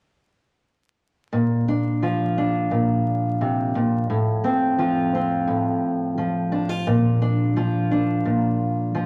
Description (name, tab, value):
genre	folk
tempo	87 BPM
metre	4/4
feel	straight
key	Bb major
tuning	A4 = 440 Hz
part	fingerpicked steel-string acoustic guitar	accompaniment	1.3-9.1 s	A2 to F4	-22 LUFS	equal	none
room	wet large studio reverb, RT60 1.2 s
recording	vinyl crackle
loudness	-22 LUFS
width	mono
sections	1.3-9.1 A section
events	none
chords	1.3 Bb; 4.1 F/A; 6.9 Bb